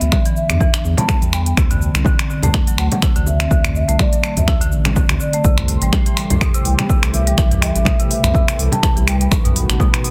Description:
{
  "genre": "afro house",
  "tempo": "124 BPM",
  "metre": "4/4",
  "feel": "swing 55% on 16ths",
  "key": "unclear",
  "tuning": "A4 = 443 Hz",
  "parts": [
    { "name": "mellow hollow bass bansuri", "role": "melody", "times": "0.0-9.3 s", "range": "D5 to A5", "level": "-27 LUFS", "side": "equal", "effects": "none" },
    { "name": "round analog bass", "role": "bass", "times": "0.0-9.8 s", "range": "A1 to E2", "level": "-21 LUFS", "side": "equal", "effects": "sidechain pumping" },
    { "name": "deep house drum kit", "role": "drums", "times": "0.0-10.1 s", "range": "cabasa, finger snaps, hi-hat, toms", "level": "-24 LUFS", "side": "equal", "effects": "soft clipping on snare" },
    { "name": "marimba with medium hard mallets", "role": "arpeggios", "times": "0.1-10.1 s", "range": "A2 to D4", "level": "-26 LUFS", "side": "equal", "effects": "sidechain pumping, tape echo" },
    { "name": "electronic kick drum", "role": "drums", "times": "0.1-9.9 s", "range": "none", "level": "-19 LUFS", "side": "equal", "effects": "none" },
    { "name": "congas", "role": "percussion", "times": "0.1-9.9 s", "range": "none", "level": "-26 LUFS", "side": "equal", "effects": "none" },
    { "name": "warm analog pad", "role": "sustained chords", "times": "5.5-10.1 s", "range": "D#3 to C6", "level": "-30 LUFS", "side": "equal", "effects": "chorus, sidechain pumping" }
  ],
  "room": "digital ambience",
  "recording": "dense, heavily limited modern master",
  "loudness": "-16 LUFS",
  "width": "mono",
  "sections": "0.0-10.1 A section",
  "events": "none",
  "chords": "0.0 E7(no3); 1.6 D7(no3); 5.4 C6; 9.3 B"
}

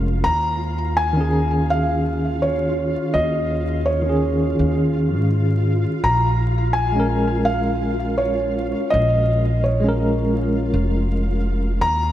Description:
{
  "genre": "trip hop",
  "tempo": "83 BPM",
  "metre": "4/4",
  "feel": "swing 56% on 16ths",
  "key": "Bb minor",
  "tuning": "A4 = 440 Hz",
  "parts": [
    { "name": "bright tine electric piano", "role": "accompaniment", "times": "0.0-11.8 s", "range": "Eb3 to Bb4", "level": "-22 LUFS", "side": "equal", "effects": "tremolo, tape echo" },
    { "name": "upright bass", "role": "bass", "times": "0.0-12.1 s", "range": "F1 to Ab2", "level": "-22 LUFS", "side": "equal", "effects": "none" },
    { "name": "flickering grainy texture", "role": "texture", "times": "0.0-12.1 s", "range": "F4", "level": "-30 LUFS", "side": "right 1 dB", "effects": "built-in reverb" },
    { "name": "felt-muted upright piano", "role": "melody", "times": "0.2-12.1 s", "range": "Db5 to Bb5", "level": "-22 LUFS", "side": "equal", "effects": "tape echo" }
  ],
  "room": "moderate lush hall reverb, RT60 3.0 s",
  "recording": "dreamy mix soaked in reverb, vinyl crackle",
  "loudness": "-17 LUFS",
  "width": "side -12 dB against mid",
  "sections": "0.0-12.1 A section",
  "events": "none",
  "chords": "0.2 Eb7sus4; 6.0 Bbm7"
}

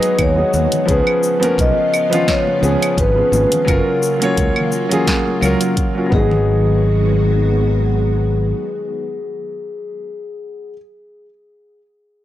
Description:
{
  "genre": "sunset chillout",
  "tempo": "86 BPM",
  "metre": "4/4",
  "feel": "swing 54% on 16ths",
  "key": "G# dorian",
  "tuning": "A4 = 440 Hz",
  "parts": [
    { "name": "vibraphone with soft mallets", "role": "melody", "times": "0.0-10.7 s", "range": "G#4 to D#5", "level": "-19 LUFS", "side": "left 1 dB", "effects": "tape echo" },
    { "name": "warm grand piano", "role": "accompaniment", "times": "0.0-10.8 s", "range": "E#3 to C#5", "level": "-20 LUFS", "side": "equal", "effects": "auto-pan" },
    { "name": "soft string machine", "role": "sustained chords", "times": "0.0-10.0 s", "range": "C#3 to F#4", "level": "-24 LUFS", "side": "equal", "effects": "ensemble chorus" },
    { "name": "deep house drum kit", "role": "drums", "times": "0.0-5.9 s", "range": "cabasa, claves, hi-hat, snare drum", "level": "-22 LUFS", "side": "right 1 dB", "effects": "none" },
    { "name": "fingered electric bass", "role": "bass", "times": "0.2-8.5 s", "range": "F#1 to D#2", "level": "-17 LUFS", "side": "equal", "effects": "none" },
    { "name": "electronic kick drum", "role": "drums", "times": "0.2-6.3 s", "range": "none", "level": "-19 LUFS", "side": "equal", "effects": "none" },
    { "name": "congas", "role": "percussion", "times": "0.5-6.4 s", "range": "none", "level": "-27 LUFS", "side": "left 3 dB", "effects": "none" }
  ],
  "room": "little or no reverb",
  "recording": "dry, gritty hardware recording",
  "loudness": "-14 LUFS",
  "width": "side -13 dB against mid",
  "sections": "0.0-6.5 A section; 6.5-9.3 B section",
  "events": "none",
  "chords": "0.0 G#m7; 0.9 C#7; 3.7 F#maj7; 6.1 G#m7"
}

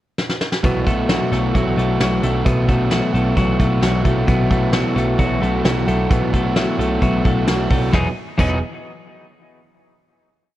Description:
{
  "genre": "jangly indie pop",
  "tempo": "132 BPM",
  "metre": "4/4",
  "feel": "straight",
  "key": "unclear",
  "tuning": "A4 = 443 Hz",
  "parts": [
    { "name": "soft brush drum kit", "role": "drums", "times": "0.2-8.5 s", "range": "crash cymbal, hi-hat, kick drum, snare drum", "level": "-20 LUFS", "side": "equal", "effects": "none" },
    { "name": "overdriven semi-hollow guitar", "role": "accompaniment", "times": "0.6-8.6 s", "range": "B2 to G#4", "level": "-22 LUFS", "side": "right 5 dB", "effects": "none" },
    { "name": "twelve-string electric guitar", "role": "arpeggios", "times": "0.6-8.6 s", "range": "B2 to G#4", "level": "-20 LUFS", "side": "left 3 dB", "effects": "analog delay" },
    { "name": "vintage muted picked electric bass", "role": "bass", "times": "0.6-8.6 s", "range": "E1 to B1", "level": "-21 LUFS", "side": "equal", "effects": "none" }
  ],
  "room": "light reverb, studio reverb",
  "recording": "worn, warbling old tape, cassette tape, warbly pitch drift",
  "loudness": "-15 LUFS",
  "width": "side -14 dB against mid",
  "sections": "0.0-0.6 pickup bar; 0.6-7.9 pre-chorus; 7.9-9.8 final chord",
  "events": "drum fill 0.2-0.6",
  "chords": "0.0 N.C.; 0.6 B7sus4; 7.9 Emaj9"
}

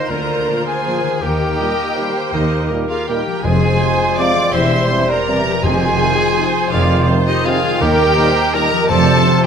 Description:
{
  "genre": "classical",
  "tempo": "164 BPM",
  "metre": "3/4",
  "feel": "uneven beats, rubato",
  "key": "unclear",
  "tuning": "A4 = 441 Hz",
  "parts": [
    { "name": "rich chamber violin section", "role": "melody", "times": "0.0-9.4 s", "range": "Eb5 to D6", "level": "-22 LUFS", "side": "left 3 dB", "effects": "none" },
    { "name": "clear clarinet", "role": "second line", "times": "0.0-9.5 s", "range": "Eb4 to G4", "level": "-28 LUFS", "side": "left 2 dB", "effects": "none" },
    { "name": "mellow cor anglais", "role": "second line", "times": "0.0-9.5 s", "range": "Bb4 to C5", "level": "-26 LUFS", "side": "right 2 dB", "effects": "none" },
    { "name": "mellow large flute ensemble", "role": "second line", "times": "0.0-9.2 s", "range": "G4 to F5", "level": "-24 LUFS", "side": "equal", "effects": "none" },
    { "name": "rich chamber violin section", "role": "second line", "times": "0.0-9.5 s", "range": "Eb4 to D5", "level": "-26 LUFS", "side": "left 2 dB", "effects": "none" },
    { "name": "mellow bassoon", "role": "accompaniment", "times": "0.0-9.5 s", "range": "C3 to Bb3", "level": "-25 LUFS", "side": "right 2 dB", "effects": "none" },
    { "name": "rich studio viola section", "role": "accompaniment", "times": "0.0-9.5 s", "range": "G4 to E5", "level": "-24 LUFS", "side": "right 2 dB", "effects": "none" },
    { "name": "concert harp", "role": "arpeggios", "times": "0.0-9.5 s", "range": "D3 to Eb5", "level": "-26 LUFS", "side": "left 10 dB", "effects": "none" },
    { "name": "clear trumpet", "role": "stabs", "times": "0.0-9.5 s", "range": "Eb4 to D5", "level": "-21 LUFS", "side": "right 2 dB", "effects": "none" },
    { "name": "rich chamber cello section", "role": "bass", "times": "0.1-9.2 s", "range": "Eb2 to Eb3", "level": "-21 LUFS", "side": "right 2 dB", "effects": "none" },
    { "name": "rich symphonic double bass section", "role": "bass", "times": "0.1-9.2 s", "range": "E1 to Eb2", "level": "-22 LUFS", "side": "right 2 dB", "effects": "none" },
    { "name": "clear trombone section", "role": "sustained chords", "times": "0.5-9.4 s", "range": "Bb2 to G3", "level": "-28 LUFS", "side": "right 3 dB", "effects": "none" },
    { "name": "dark French horn section", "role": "sustained chords", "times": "0.5-9.4 s", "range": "F3 to F4", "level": "-28 LUFS", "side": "left 3 dB", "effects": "none" },
    { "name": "timpani", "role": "percussion", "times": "3.4-6.1, 8.9-9.4 s", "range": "F2", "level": "-24 LUFS", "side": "left 1 dB", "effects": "none" }
  ],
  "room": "moderate scoring stage reverb, RT60 1.8 s",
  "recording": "close, detailed microphones",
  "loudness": "-13 LUFS",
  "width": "side -7 dB against mid",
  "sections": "0.0-9.5 A section",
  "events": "none",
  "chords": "0.1 Bb/D; 1.2 Eb; 3.4 Fm; 4.5 C/E; 5.6 Fm7; 7.8 Eb; 8.9 F"
}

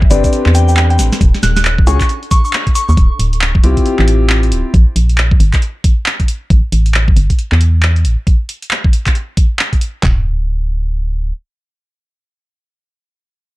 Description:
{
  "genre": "UK garage, two-step garage",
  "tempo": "136 BPM",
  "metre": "4/4",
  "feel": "swing 61% on 16ths",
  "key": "D dorian",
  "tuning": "A4 = 438 Hz",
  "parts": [
    { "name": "soft string machine", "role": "sustained chords", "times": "0.0-3.0 s", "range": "D4 to A4", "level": "-33 LUFS", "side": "left 1 dB", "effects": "phaser, ensemble chorus, sidechain pumping" },
    { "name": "organ-like FM bass", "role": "bass", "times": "0.0-11.3 s", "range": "D1 to E2", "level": "-12 LUFS", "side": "equal", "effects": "none" },
    { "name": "garage drum kit", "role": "drums", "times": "0.0-10.2 s", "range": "handclaps, kick drum, toms", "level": "-11 LUFS", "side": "equal", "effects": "none" },
    { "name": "soft synth bell", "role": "melody", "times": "0.1-2.9 s", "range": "D5 to Gb6", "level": "-20 LUFS", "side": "left 1 dB", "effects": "chorus, tape echo" },
    { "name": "dark baby grand piano", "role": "stabs", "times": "0.1-4.7 s", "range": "C4 to B4", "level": "-17 LUFS", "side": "left 3 dB", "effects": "tape echo" },
    { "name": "punchy analog drum machine", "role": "drums", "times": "0.1-9.9 s", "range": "handclaps, hi-hat, shaker, snare drum", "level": "-18 LUFS", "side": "equal", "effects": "none" }
  ],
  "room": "little or no reverb",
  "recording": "dark, warm production",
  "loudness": "-10 LUFS",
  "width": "side -19 dB against mid",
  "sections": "0.0-3.0 A section; 3.0-10.0 B section; 10.0-13.6 C section",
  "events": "drop 0.0-3.0; band accent 2.5",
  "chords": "0.0 Am11; 1.2 Eb7(no3); 3.0 Dm11; 4.7 N.C.; 6.5 A5; 8.3 N.C."
}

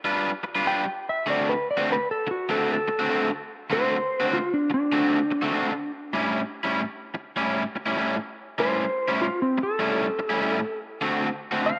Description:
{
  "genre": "blues",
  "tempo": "98 BPM",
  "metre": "4/4",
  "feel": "swing 64% on 8ths",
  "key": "D mixolydian",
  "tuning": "A4 = 438 Hz",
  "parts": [
    { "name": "crunchy overdriven guitar", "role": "riff", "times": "0.0-11.7 s", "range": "A2 to B4", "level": "-28 LUFS", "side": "equal", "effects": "none" },
    { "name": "clean lap steel guitar", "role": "melody", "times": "0.7-11.8 s", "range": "C4 to G5", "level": "-28 LUFS", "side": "equal", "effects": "none" }
  ],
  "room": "wet spring reverb, RT60 2.4 s",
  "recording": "lossy compression artefacts",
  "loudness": "-25 LUFS",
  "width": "mono",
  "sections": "0.0-11.8 A section",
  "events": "electric slide guitar solo 0.0-11.8",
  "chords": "0.0 G7; 1.3 D7; 6.1 A7; 11.0 D7"
}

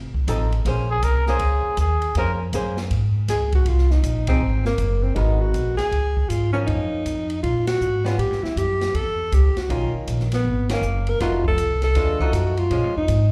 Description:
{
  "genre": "jazz, small-group swing and bop",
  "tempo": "159 BPM",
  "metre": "4/4",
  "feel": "swing 65% on 8ths",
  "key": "Bb minor",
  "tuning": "A4 = 440 Hz",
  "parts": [
    { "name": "upright bass", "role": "bass", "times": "0.0-13.3 s", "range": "F1 to Bb2", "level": "-24 LUFS", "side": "equal", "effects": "none" },
    { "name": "open jazz drum kit", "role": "drums", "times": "0.1-13.2 s", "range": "hi-hat, kick drum, ride cymbal, snare drum", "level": "-31 LUFS", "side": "equal", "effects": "none" },
    { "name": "archtop guitar, miked and amplified", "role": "accompaniment", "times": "0.3-12.9 s", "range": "D#3 to C5", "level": "-31 LUFS", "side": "equal", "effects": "plate reverb, slapback echo" },
    { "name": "mellow trumpet", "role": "second line", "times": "0.9-2.3 s", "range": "Ab4 to Bb4", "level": "-26 LUFS", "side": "equal", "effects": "plate reverb, slapback echo" },
    { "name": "mellow alto saxophone", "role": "melody", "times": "3.3-13.3 s", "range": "Bb3 to A#4", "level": "-26 LUFS", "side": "equal", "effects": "plate reverb" }
  ],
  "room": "light reverb",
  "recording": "live gig heard through the venue's PA, club reverb",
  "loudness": "-21 LUFS",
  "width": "mono",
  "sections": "0.0-3.7 A section; 3.7-13.3 B section",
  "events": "trumpet solo 0.0-3.7; band accent 4.2, 7.6, 10.6",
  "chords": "0.0 F7; 0.7 Bbm9; 3.7 Fm7 (rootless); 5.2 Abm9; 5.9 Db; 6.7 Gbmaj7; 8.2 A7; 9.7 Bmaj9; 11.2 F7b9; 12.7 Bbm7"
}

